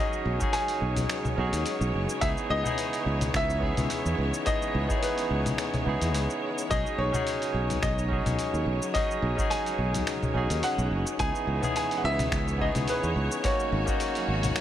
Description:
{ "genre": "sunset chillout", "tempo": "107 BPM", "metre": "4/4", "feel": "swing 54% on 16ths", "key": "C# minor", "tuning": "A4 = 440 Hz", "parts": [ { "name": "warm baby grand piano", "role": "melody", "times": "0.0-14.6 s", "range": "B4 to G#5", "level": "-32 LUFS", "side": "left 1 dB", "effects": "tape echo, shimmer reverb" }, { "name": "barky tine electric piano", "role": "accompaniment", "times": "0.0-14.6 s", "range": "A#3 to G#4", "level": "-30 LUFS", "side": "equal", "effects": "auto-pan, tape echo, shimmer reverb" }, { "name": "clear studio string section", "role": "sustained chords", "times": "0.0-14.6 s", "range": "C#3 to C#5", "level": "-35 LUFS", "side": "equal", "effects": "shimmer reverb" }, { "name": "downlifter", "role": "sound effects", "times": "0.2-2.2 s", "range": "none", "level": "barely audible", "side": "none", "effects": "none" }, { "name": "dusty soul sampler-style drum kit", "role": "drums", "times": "0.1-14.6 s", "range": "congas, finger snaps, hi-hat, shaker", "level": "-33 LUFS", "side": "left 1 dB", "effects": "small room reverb" }, { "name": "sustaining fretless electric bass", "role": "bass", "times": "0.3-14.5 s", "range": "F#1 to E2", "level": "-29 LUFS", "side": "equal", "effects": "none" }, { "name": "electronic kick drum", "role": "drums", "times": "0.4-14.0 s", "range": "none", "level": "-32 LUFS", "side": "equal", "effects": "small room reverb" } ], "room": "light reverb", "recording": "none", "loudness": "-25 LUFS", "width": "side -11 dB against mid", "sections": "0.0-14.6 A section", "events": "none", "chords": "0.0 B69; 2.2 C#m9; 6.7 B69; 11.2 C#m9; 13.4 G#7sus4" }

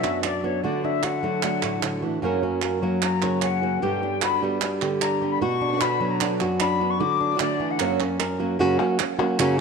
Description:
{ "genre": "flamenco", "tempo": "151 BPM", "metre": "4/4", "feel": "straight", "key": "unclear", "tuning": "A4 = 439 Hz", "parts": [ { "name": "flamenco guitar", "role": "melody", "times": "0.0-9.6 s", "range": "F#2 to C#5", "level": "-24 LUFS", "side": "equal", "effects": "tape echo" }, { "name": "jazz flute", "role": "second line", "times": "0.0-7.9 s", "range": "C#5 to D6", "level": "-27 LUFS", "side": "left 10 dB", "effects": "none" }, { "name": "flamenco guitar", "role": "stabs", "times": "0.0-9.4 s", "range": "F#2 to G4", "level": "-29 LUFS", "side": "right 9 dB", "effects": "none" }, { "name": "palmas hand claps", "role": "percussion", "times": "0.0-9.6 s", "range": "none", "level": "-28 LUFS", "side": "right 8 dB", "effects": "none" } ], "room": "moderate echo chamber reverb, RT60 2.0 s, studio ambience", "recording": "1960s-style stereo with parts hard left and right", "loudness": "-21 LUFS", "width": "side -5 dB against mid", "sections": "0.0-8.6 A section; 8.6-9.6 B section", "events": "flute solo 0.0-8.6", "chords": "0.0 Bm; 0.6 D; 2.2 F#; 3.8 G; 5.4 Bm; 7.0 D; 7.8 F#" }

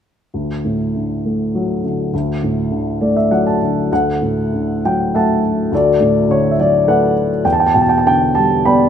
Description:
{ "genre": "classical, lyrical solo piano", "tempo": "101 BPM", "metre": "3/4", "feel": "uneven beats, rubato", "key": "D major", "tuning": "A4 = 438 Hz", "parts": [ { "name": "dark upright piano", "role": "solo", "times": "0.3-8.9 s", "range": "D2 to B5", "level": "-13 LUFS", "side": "equal", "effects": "none" } ], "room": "moderate scoring stage reverb, RT60 2.1 s", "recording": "minimal, uncompressed stereo recording", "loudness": "-13 LUFS", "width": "side -8 dB against mid", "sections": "0.3-3.9 A section; 3.9-8.9 B section", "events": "upright piano fill 2.7-3.9", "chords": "0.3 D; 3.9 Dadd9; 5.7 Bm7/D; 7.5 Em7" }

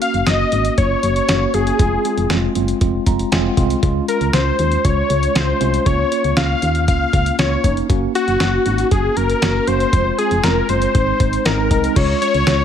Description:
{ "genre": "synth-pop", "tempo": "118 BPM", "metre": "4/4", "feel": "straight", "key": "Db major", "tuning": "A4 = 441 Hz", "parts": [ { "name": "wide unison lead", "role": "melody", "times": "0.0-12.6 s", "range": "Gb4 to F5", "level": "-19 LUFS", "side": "left 3 dB", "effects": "ping-pong delay" }, { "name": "mellow tine electric piano", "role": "accompaniment", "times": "0.0-12.6 s", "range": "Ab3 to Bb5", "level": "-21 LUFS", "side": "right 1 dB", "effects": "medium stereo tremolo" }, { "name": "dusty soul sampler-style drum kit", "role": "drums", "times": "0.0-12.6 s", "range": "crash cymbal, hi-hat, kick drum, snare drum", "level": "-19 LUFS", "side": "equal", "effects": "none" }, { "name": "solid FM bass", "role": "bass", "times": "0.1-12.6 s", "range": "F1 to Eb2", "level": "-20 LUFS", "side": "equal", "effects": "none" } ], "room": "light reverb, digital ambience", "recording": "none", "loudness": "-14 LUFS", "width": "side -8 dB against mid", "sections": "0.0-12.0 A section", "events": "tine electric piano fill 2.8-3.8", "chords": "0.0 Gb6; 1.8 Fm; 3.8 Db; 5.9 Bbm/Db; 7.9 Gb; 9.9 Fm; 10.9 Abadd9; 12.0 Db" }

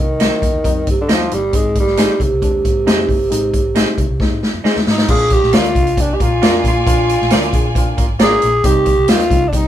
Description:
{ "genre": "uptempo 1960s-style soul", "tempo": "135 BPM", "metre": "4/4", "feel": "straight", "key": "Bb mixolydian", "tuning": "A4 = 440 Hz", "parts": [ { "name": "growling tenor saxophone", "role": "melody", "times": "0.0-9.7 s", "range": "C3 to Ab4", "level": "-16 LUFS", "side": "equal", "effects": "none" }, { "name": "reed electric piano", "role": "accompaniment", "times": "0.0-9.7 s", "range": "F3 to Bb4", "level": "-24 LUFS", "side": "left 4 dB", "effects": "none" }, { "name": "vintage muted fingered electric bass", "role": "bass", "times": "0.0-9.7 s", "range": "G1 to Bb2", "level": "-22 LUFS", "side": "equal", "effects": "none" }, { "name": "electric guitar through a small old amp", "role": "stabs", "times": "0.2-9.2 s", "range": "Eb4 to Eb5", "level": "-21 LUFS", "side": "right 3 dB", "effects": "none" }, { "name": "swinging big-band drum kit", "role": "drums", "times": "0.2-9.6 s", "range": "crash cymbal, hi-hat, kick drum, snare drum", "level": "-16 LUFS", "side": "equal", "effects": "none" }, { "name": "bright studio violin section", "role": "second line", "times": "6.0-9.7 s", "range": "Eb4 to Ab5", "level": "-24 LUFS", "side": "right 2 dB", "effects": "none" }, { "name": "warm horn section", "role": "second line", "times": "6.2-8.5 s", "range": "Bb3 to F4", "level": "-24 LUFS", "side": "right 3 dB", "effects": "none" } ], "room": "light reverb", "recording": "band playing live in one room", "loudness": "-12 LUFS", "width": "side -11 dB against mid", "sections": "0.0-5.1 A section; 5.1-9.7 B section", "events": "drum fill 4.2-5.1", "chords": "0.0 Cm; 1.5 Ab; 5.1 Bb; 8.6 Cm" }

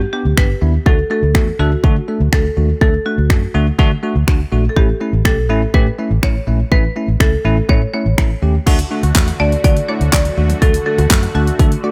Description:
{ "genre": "dance-pop", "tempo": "123 BPM", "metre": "4/4", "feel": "straight", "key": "D major", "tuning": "A4 = 438 Hz", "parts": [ { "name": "marimba with hard mallets", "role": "melody", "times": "0.0-11.9 s", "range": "F#4 to D5", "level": "-24 LUFS", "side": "equal", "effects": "none" }, { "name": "vintage muted fingered electric bass", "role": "bass", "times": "0.0-11.7 s", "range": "G1 to D3", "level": "-19 LUFS", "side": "equal", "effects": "sidechain pumping" }, { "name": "bright tine electric piano", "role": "accompaniment", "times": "0.1-11.9 s", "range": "A3 to A4", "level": "-24 LUFS", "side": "equal", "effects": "analog chorus, sidechain pumping" }, { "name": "pop drum kit", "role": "drums", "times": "0.4-11.8 s", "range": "crash cymbal, finger snaps, handclaps, hi-hat, kick drum, snare drum", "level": "-16 LUFS", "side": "equal", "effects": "none" }, { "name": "filtered supersaw swell", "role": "sustained chords", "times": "8.7-11.9 s", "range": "D3 to F#4", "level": "-29 LUFS", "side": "equal", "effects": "phaser, sidechain pumping" }, { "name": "unison pluck", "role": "arpeggios", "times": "8.7-11.9 s", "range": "D3 to A5", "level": "-32 LUFS", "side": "equal", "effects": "sidechain pumping, digital delay" } ], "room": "little or no reverb", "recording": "none", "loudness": "-15 LUFS", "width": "mono", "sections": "0.0-8.7 A section; 8.7-11.9 B section", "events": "none", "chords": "0.0 G; 0.9 D; 4.8 A; 8.7 D" }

